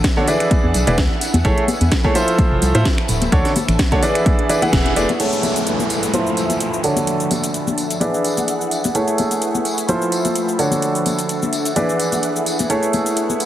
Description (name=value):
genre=piano house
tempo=128 BPM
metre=4/4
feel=swing 55% on 16ths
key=A major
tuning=A4 = 441 Hz
part: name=organ-like FM bass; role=bass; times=0.0-5.1 s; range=D1 to A2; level=-18 LUFS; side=equal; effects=sidechain pumping
part: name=electronic kick drum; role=drums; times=0.0-4.8 s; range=none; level=-18 LUFS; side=equal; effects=overdrive
part: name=house drum kit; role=drums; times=0.0-13.5 s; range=crash cymbal, finger snaps, hi-hat, shaker, snare drum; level=-24 LUFS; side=equal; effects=none
part: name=tambourine and congas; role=percussion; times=0.0-13.5 s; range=none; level=-25 LUFS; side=left 3 dB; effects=none
part: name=ethereal airy pad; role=texture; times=0.0-13.5 s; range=F3 to C#6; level=-24 LUFS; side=equal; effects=ensemble chorus, built-in reverb, sidechain pumping
part: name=clear grand piano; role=riff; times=0.2-13.5 s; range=D3 to F#5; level=-19 LUFS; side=right 1 dB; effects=sidechain pumping, low-pass filter, tape echo
part: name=downlifter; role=sound effects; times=5.2-8.9 s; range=none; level=-26 LUFS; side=left 1 dB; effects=none
room=moderate lush hall reverb, RT60 1.9 s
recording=heavily compressed radio sound, multiband compression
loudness=-15 LUFS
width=side -12 dB against mid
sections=0.0-5.2 A section; 5.2-13.5 B section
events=band accent 4.7; filter sweep on grand piano 5.2-13.5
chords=0.0 Dmaj7; 0.5 E7; 1.4 Amaj7; 2.4 Fmaj7; 3.1 Dmaj7; 4.3 E7; 5.2 Amaj7; 6.1 Fmaj7; 6.8 Dmaj7; 8.0 E7; 8.9 Amaj7; 9.9 Fmaj7; 10.6 Dmaj7; 11.8 E7; 12.7 Amaj7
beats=0.04 0.51 0.98 | 1.45 1.92 2.39 2.85 | 3.32 3.79 4.26 4.73 | 5.20 5.67 6.14 6.61 | 7.07 7.54 8.01 8.48 | 8.95 9.42 9.89 10.36 | 10.82 11.29 11.76 12.23 | 12.70 13.17